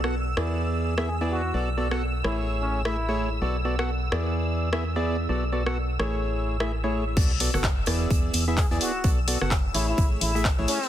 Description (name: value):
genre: piano house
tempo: 128 BPM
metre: 4/4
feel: swing 59% on 16ths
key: B dorian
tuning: A4 = 440 Hz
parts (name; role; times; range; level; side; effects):
- analog string pad; sustained chords; 0.0-10.9 s; E6; -35 LUFS; right 2 dB; ensemble chorus, sidechain pumping
- percussive organ stab; riff; 0.0-10.8 s; A3 to F#5; -29 LUFS; equal; chorus, cassette tape, sidechain pumping, ping-pong delay
- organ-like FM bass; bass; 0.0-10.7 s; F#1 to E2; -28 LUFS; equal; sidechain pumping
- house drum kit; drums; 0.0-10.8 s; crash cymbal, handclaps, hi-hat, rim click; -30 LUFS; left 1 dB; soft clipping on snare
- trumpet with plunger mute; melody; 1.1-3.3, 8.6-10.9 s; C#4 to G#4; -32 LUFS; left 1 dB; ping-pong delay
- electronic kick drum; drums; 7.2-10.6 s; none; -23 LUFS; equal; none
- loose indie drum kit; drums; 7.2-10.9 s; hi-hat, snare drum; -36 LUFS; right 5 dB; high-pass filter on hats, high-pass filter on snare, high-pass filter on room
- sub drop; sound effects; 7.2-9.0 s; none; -34 LUFS; equal; none
room: light reverb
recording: dense, heavily limited modern master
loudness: -23 LUFS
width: side -11 dB against mid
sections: 0.0-7.2 A section; 7.2-10.9 B section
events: drop 7.2-10.9; impact 7.2-9.0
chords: 0.4 E7; 1.5 Bm7; 2.2 Amaj7; 3.4 Bm7; 4.1 E7; 5.3 Bm7; 6.0 Amaj7; 7.2 Bm7; 7.9 E7; 9.0 Bm7; 9.7 Amaj7